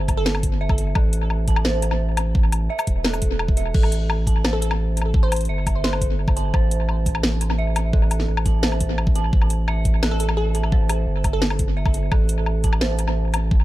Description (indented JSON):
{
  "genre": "half-time drum and bass",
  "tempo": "172 BPM",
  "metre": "4/4",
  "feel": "half-time",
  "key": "A minor",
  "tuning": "A4 = 435 Hz",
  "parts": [
    { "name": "dark detuned synth bell", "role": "arpeggios", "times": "0.0-13.6 s", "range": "A4 to A5", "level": "-30 LUFS", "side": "right 4 dB", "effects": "chorus, phaser, analog delay" },
    { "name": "saturated sub bass", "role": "bass", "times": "0.0-13.6 s", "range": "E1 to A1", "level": "-22 LUFS", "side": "equal", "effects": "none" },
    { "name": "drum and bass drum kit", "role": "drums", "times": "0.1-13.4 s", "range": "crash cymbal, hi-hat, shaker, snare drum, woodblock", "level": "-26 LUFS", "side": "left 2 dB", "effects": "analog delay" },
    { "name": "electronic kick drum", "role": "drums", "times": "0.1-13.6 s", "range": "none", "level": "-19 LUFS", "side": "equal", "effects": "none" },
    { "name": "glassy wavetable pluck", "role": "melody", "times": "0.2-0.7, 4.5-6.2, 10.1-11.8 s", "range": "A4 to C5", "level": "-30 LUFS", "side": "right 1 dB", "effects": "chorus, tape echo" }
  ],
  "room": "little or no reverb",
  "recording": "echo-heavy mix",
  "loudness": "-18 LUFS",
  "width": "side -16 dB against mid",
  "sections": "0.0-13.6 A section",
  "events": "none",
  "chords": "0.0 Am"
}